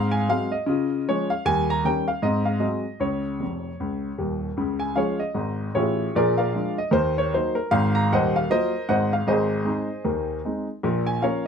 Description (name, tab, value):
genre	jazz, stride piano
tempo	154 BPM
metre	4/4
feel	swing 61% on 8ths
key	Db major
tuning	A4 = 440 Hz
part	warm grand piano	solo	0.0-11.5 s	Eb1 to Bb5	-21 LUFS	equal	none
room	moderate small room reverb, RT60 0.5 s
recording	close, detailed microphones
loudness	-21 LUFS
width	side -7 dB against mid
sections	0.0-4.6 A section; 4.6-11.5 A section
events	grand piano fill 3.4-4.6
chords	0.0 Ab7; 0.7 Db; 1.5 Eb7; 2.2 Ab7; 3.0 Db; 6.1 Bb7; 6.9 Ebm; 7.7 Ab13; 9.3 Ab; 10.8 Bbm